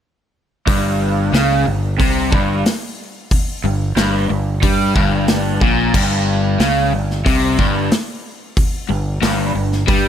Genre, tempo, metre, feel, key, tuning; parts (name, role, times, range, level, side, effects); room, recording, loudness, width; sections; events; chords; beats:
classic rock; 91 BPM; 4/4; straight; A4 = 440 Hz
overdriven electric guitar; riff; 0.7-10.1 s; G2 to G3; -20 LUFS; left 10 dB
raw garage guitar; riff; 0.7-10.1 s; G2 to G3; -21 LUFS; right 11 dB; overdrive, phaser
growling fingered electric bass; bass; 0.7-10.1 s; G1 to G2; -20 LUFS; equal; overdrive
big rock drum kit; drums; 0.7-10.0 s; crash cymbal, hi-hat, kick drum, snare drum; -19 LUFS; equal
small room ambience; -14 LUFS; side -9 dB against mid
0.7-10.1 A section
0.7 G(b5, no3)
| 0.67 1.33 1.99 2.65 | 3.31 3.96 4.62 5.28 | 5.94 6.60 7.25 7.91 | 8.57 9.22 9.88